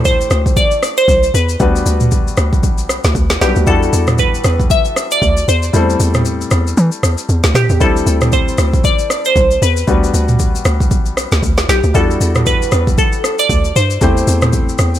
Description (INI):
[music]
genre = amapiano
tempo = 116 BPM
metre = 4/4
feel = swing 58% on 16ths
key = A dorian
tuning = A4 = 440 Hz
[part]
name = glassy wavetable pluck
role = melody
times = 0.0-15.0 s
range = G4 to E5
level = -16 LUFS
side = right 1 dB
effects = chorus, ping-pong delay
[part]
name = clear grand piano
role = accompaniment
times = 0.0-15.0 s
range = G3 to C5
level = -20 LUFS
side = left 3 dB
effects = none
[part]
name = hollow log drum bass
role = bass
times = 0.0-15.0 s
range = B1 to E3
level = -15 LUFS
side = equal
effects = none
[part]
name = afro-pop drum kit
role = drums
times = 0.0-15.0 s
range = kick drum, rim click, shaker, snare drum, toms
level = -15 LUFS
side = equal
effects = overdrive
[sound]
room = little or no reverb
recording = none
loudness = -11 LUFS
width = side -12 dB against mid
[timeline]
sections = 0.0-15.0 A section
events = kick muted 5.7-7.8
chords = 0.0 D9sus4; 1.6 Gmaj7/D; 3.7 Em11; 5.7 Am7/E; 7.8 D9sus4; 9.9 Gmaj7/D; 11.9 Em11; 14.0 Am7/E